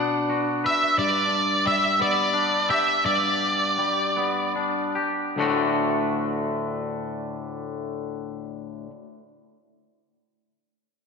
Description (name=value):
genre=post-rock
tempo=48-60 BPM (dotted quarters)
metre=6/8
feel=straight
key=D major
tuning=A4 = 441 Hz
part: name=twangy electric guitar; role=arpeggios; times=0.0-8.9 s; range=D2 to B4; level=-25 LUFS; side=left 2 dB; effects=slapback echo
part: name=octave-fuzz lead guitar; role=melody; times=0.7-4.5 s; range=D5 to E5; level=-22 LUFS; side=right 1 dB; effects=distortion, slapback echo
room=wet lush hall reverb, RT60 2.2 s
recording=big arena sound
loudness=-21 LUFS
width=side -5 dB against mid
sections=0.0-5.4 A section; 5.4-10.4 B section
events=slowing down 1.0-5.4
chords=0.0 Bm; 1.0 G; 5.4 D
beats=| 0.97 1.99 | 3.05 4.17 | 5.37 6.63 | 7.90